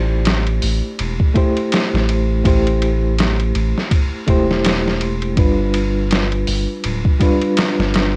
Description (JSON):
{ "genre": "trip hop", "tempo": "82 BPM", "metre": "4/4", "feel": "swing 58% on 16ths", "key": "A minor", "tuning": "A4 = 440 Hz", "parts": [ { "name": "reed electric piano", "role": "accompaniment", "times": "0.0-8.2 s", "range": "G3 to C5", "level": "-22 LUFS", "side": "equal", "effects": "overdrive, tremolo, tape echo" }, { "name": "soft dub sub bass", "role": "bass", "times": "0.0-8.2 s", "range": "D1 to A1", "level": "-21 LUFS", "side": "equal", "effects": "tube saturation" }, { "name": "trip hop sampler-style drum kit", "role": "drums", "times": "0.3-8.1 s", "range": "hi-hat, kick drum, ride cymbal, snare drum", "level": "-21 LUFS", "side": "equal", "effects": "cassette tape" } ], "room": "little or no reverb", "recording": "home recording on cassette, faint mains hum", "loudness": "-17 LUFS", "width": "mono", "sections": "0.0-8.2 A section", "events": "none", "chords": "0.0 Am7; 5.4 G7" }